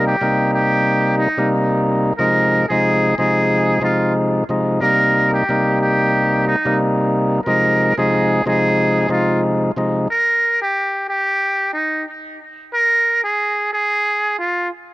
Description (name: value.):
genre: hip hop.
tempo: 91 BPM.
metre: 4/4.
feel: swing 55% on 16ths.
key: unclear.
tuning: A4 = 440 Hz.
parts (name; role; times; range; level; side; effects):
trumpet with metal mute; melody; 0.0-14.7 s; Eb4 to Bb4; -18 LUFS; right 1 dB; none.
percussive tonewheel organ; accompaniment; 0.0-10.1 s; C3 to Eb4; -16 LUFS; equal; overdrive, cassette tape.
room: little or no reverb.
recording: dry, gritty hardware recording.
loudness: -15 LUFS.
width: side -18 dB against mid.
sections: 0.0-14.9 A section.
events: break 10.1-14.9.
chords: 0.0 Cm7; 2.2 Fm7/C; 4.8 Cm7; 7.5 Fm7/C; 10.1 N.C..